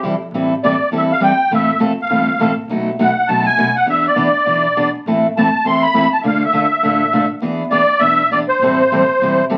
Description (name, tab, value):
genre	acoustic string swing (jazz manouche)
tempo	203 BPM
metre	4/4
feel	swing 60% on 8ths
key	A minor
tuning	A4 = 440 Hz
part	picked steel-string acoustic guitar	accompaniment	0.0-9.6 s	B2 to A4	-19 LUFS	equal	none
part	upright bass	bass	0.0-9.6 s	E1 to F#2	-38 LUFS	equal	none
part	musette accordion	melody	0.6-9.4 s	C5 to C6	-17 LUFS	equal	none
room	wet small room reverb, RT60 0.6 s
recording	very old 78 rpm record, vinyl crackle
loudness	-15 LUFS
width	mono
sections	0.3-9.6 A section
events	none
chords	0.3 Am7; 1.5 Fmaj7; 2.7 B7; 3.9 E7; 5.1 Am; 6.2 Dm; 7.4 E7; 8.6 Am7